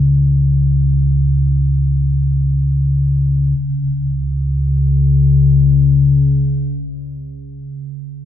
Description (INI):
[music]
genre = ambient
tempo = free time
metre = none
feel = none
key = unclear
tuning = A4 = 440 Hz
[part]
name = deep rumbling drone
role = drone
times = 0.0-7.6 s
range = C#2 to C#3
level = -13 LUFS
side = left 1 dB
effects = built-in reverb, lush chorus
[sound]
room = wet cathedral reverb, RT60 5.2 s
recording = dark, warm production, nothing above 11.0 kHz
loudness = -12 LUFS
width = side -11 dB against mid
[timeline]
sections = 0.0-3.6 A section; 3.6-8.2 B section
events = none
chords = none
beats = free time